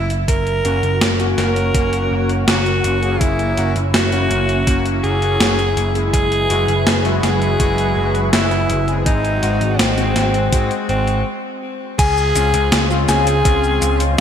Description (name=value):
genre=synthwave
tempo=82 BPM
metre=4/4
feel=straight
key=F# mixolydian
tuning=A4 = 439 Hz
part: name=raspy alto saxophone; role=melody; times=0.0-14.0 s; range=B#3 to A#4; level=-20 LUFS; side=equal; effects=ping-pong delay, shimmer reverb
part: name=overdriven picked electric bass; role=bass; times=0.0-14.1 s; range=F#1 to G#2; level=-20 LUFS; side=equal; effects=none
part: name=gated 80s digital drum machine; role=drums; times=0.1-14.1 s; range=cabasa, crash cymbal, hi-hat, snare drum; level=-21 LUFS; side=equal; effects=gated reverb, gated reverb snare, overdrive
part: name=analog string pad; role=sustained chords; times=0.6-14.2 s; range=Db3 to C5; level=-24 LUFS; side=equal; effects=ensemble chorus, sidechain pumping, shimmer reverb
part: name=electronic kick drum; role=drums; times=0.3-13.6 s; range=none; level=-18 LUFS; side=right 1 dB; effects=overdrive
part: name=analog synth brass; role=stabs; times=0.6-14.1 s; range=G#3 to G#4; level=-24 LUFS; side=left 3 dB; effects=chorus, ping-pong delay, shimmer reverb
part: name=soft synth bell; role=second line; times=12.0-14.0 s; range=Ab5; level=-21 LUFS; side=left 4 dB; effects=chorus, ping-pong delay, shimmer reverb
room=moderate plate reverb, RT60 3.4 s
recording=bright 1980s-style digital production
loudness=-14 LUFS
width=side -8 dB against mid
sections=0.0-12.0 A section; 12.0-14.2 B section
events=stop 11.3-12.0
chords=0.3 F#; 6.1 Eadd9/F#; 9.1 G#7; 12.0 Dbmaj7